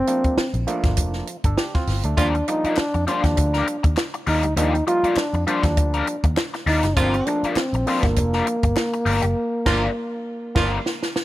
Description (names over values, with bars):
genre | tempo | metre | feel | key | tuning
funk | 100 BPM | 4/4 | swing 56% on 16ths | unclear | A4 = 440 Hz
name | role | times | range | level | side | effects
breathy trombone | melody | 0.0-11.2 s | Bb3 to F4 | -23 LUFS | equal | none
auto-wah clav | stabs | 0.1-10.8 s | F3 to A4 | -29 LUFS | right 2 dB | overdrive
compact cocktail drum kit | drums | 0.1-11.2 s | crash cymbal, hi-hat, kick drum, snare drum | -23 LUFS | equal | none
vintage muted picked electric bass | bass | 0.2-10.8 s | F1 to F2 | -23 LUFS | equal | none
warm baritone saxophone | second line | 2.2-2.3, 7.0-10.7 s | F4 | -28 LUFS | right 4 dB | none
crunchy overdriven guitar | accompaniment | 2.2-10.8 s | G3 to C5 | -26 LUFS | left 5 dB | wah
group handclap | percussion | 2.8-8.9 s | none | -32 LUFS | left 5 dB | none
room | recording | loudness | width
small room ambience | none | -19 LUFS | side -15 dB against mid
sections
0.0-11.2 A section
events
break 0.0-2.2; band accent 9.4-11.2; drum fill 10.6-11.2; clav fill 10.9-11.2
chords
0.0 Gm7; 2.2 Ebmaj9; 7.0 Gm7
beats
0.37 0.97 1.57 | 2.17 2.77 3.37 3.97 | 4.57 5.17 5.77 6.37 | 6.97 7.57 8.17 8.77 | 9.36 9.96 10.56 11.16